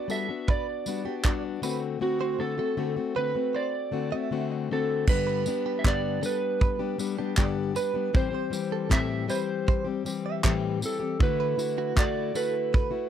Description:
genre	acoustic pop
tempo	78 BPM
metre	4/4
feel	straight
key	G major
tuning	A4 = 440 Hz
part	electric slide guitar	melody	0.0-13.1 s	F#4 to E5	-30 LUFS	right 4 dB	none
part	fingerpicked plugged-in steel-string acoustic guitar	accompaniment	0.0-13.1 s	G2 to G4	-29 LUFS	left 7 dB	none
part	direct-recorded clean electric guitar	arpeggios	0.1-12.9 s	F#4 to E5	-37 LUFS	right 10 dB	tremolo, tape echo
part	natural country drum kit	drums	0.1-12.9 s	crash cymbal, handclaps, kick drum, tambourine	-26 LUFS	right 1 dB	none
room	light reverb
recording	dry, close 1970s-style studio recording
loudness	-25 LUFS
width	side -9 dB against mid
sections	0.0-5.1 A section; 5.1-13.1 B section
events	none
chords	0.0 Gmaj7; 1.6 D7; 5.1 G; 8.1 Am7; 11.2 Dadd9

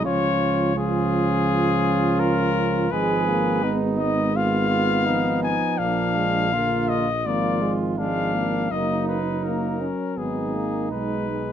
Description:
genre	classical, brass quintet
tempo	83 BPM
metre	4/4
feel	straight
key	unclear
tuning	A4 = 440 Hz
part	warm trumpet	melody	0.0-11.5 s	Ab4 to Ab5	-25 LUFS	left 6 dB	none
part	warm flugelhorn	second line	0.0-11.5 s	D4 to Ab4	-27 LUFS	right 7 dB	none
part	clear French horn	accompaniment	0.0-11.5 s	Ab3 to Db4	-27 LUFS	left 4 dB	none
part	dark trombone	accompaniment	0.0-11.5 s	D3 to Ab3	-29 LUFS	right 3 dB	none
part	mellow tuba	bass	0.1-11.5 s	Gb1 to Db2	-26 LUFS	right 3 dB	none
room	light reverb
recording	none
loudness	-20 LUFS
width	side -9 dB against mid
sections	0.0-11.5 A section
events	none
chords	0.0 Db; 2.9 Fdim/Ab; 5.8 Bb; 7.3 Bb7/Ab; 8.7 Ebm/Gb; 10.2 Abm

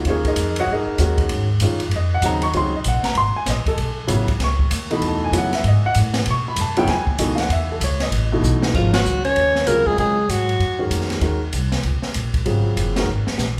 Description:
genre	modal jazz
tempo	194 BPM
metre	4/4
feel	swing 63% on 8ths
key	unclear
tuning	A4 = 439 Hz
part	warm upright piano	accompaniment	0.0-13.1 s	B2 to Db6	-24 LUFS	equal	none
part	upright bass	bass	0.0-13.6 s	Gb1 to Db3	-24 LUFS	equal	none
part	open jazz drum kit	drums	0.0-13.5 s	crash cymbal, hi-hat, kick drum, ride cymbal, snare drum	-27 LUFS	equal	none
part	dark bass clarinet	second line	8.7-10.9 s	F3 to Db4	-29 LUFS	equal	none
part	growling alto saxophone	melody	8.8-10.9 s	F4 to Db5	-21 LUFS	equal	none
room	wet large studio reverb, RT60 1.4 s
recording	band playing live in one room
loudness	-20 LUFS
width	mono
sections	0.0-8.7 A section; 8.7-13.6 B section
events	drum fill 8.4-8.7, 13.1-13.4; band accent 8.9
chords	0.0 Ab9sus4; 3.8 B9sus4; 8.7 Ab9sus4

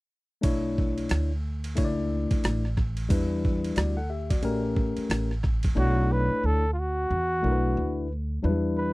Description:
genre	hip hop, jazz-hop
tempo	90 BPM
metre	4/4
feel	swing 61% on 16ths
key	B minor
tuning	A4 = 442 Hz
part	tine electric piano	accompaniment	0.4-8.9 s	F#3 to F#5	-28 LUFS	left 2 dB	none
part	upright bass	bass	0.4-8.9 s	A1 to E2	-28 LUFS	equal	none
part	boom bap sampler-style drum kit	drums	0.4-5.8 s	hi-hat, kick drum, ride cymbal, rim click	-27 LUFS	right 1 dB	overdrive
part	breathy flugelhorn	melody	5.8-8.9 s	E#4 to B4	-27 LUFS	equal	none
room	little or no reverb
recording	dry, close 1970s-style studio recording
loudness	-24 LUFS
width	side -21 dB against mid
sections	0.4-5.8 A section; 5.8-8.9 B section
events	none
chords	0.4 Bm11; 3.1 Em7; 4.4 A7b9; 5.8 Bm11

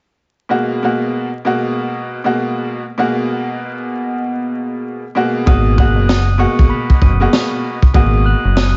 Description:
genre	hip hop, boom-bap hip-hop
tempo	97 BPM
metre	4/4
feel	swing 62% on 16ths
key	G# minor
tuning	A4 = 440 Hz
part	bright upright piano	accompaniment	0.5-8.8 s	B2 to F#4	-20 LUFS	equal	cassette tape, high-pass filter, low-pass filter
part	glockenspiel with rubber mallets	melody	5.5-8.8 s	B5 to F#7	-24 LUFS	equal	high-pass filter, low-pass filter, digital delay
part	deep dub fingered electric bass	bass	5.5-8.8 s	F#1 to G#1	-17 LUFS	equal	none
part	crunchy breakbeat drum kit	drums	5.5-8.7 s	kick drum, snare drum	-16 LUFS	equal	none
room	light reverb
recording	vinyl crackle, nothing above 7.7 kHz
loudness	-16 LUFS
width	mono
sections	0.5-5.5 A section; 5.5-8.8 B section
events	hi-hats muted 5.5-8.8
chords	0.5 G#m9

